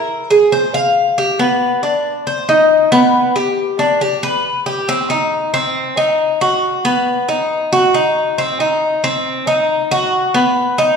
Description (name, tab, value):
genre	latin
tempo	138 BPM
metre	4/4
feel	straight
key	unclear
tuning	A4 = 440 Hz
part	Cuban tres	solo	0.0-11.0 s	B3 to F5	-13 LUFS	equal	none
room	wet recital hall reverb, RT60 1.6 s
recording	recorded in a church or concert hall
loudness	-13 LUFS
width	side -6 dB against mid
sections	0.0-4.9 A section; 4.9-11.0 B section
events	none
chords	none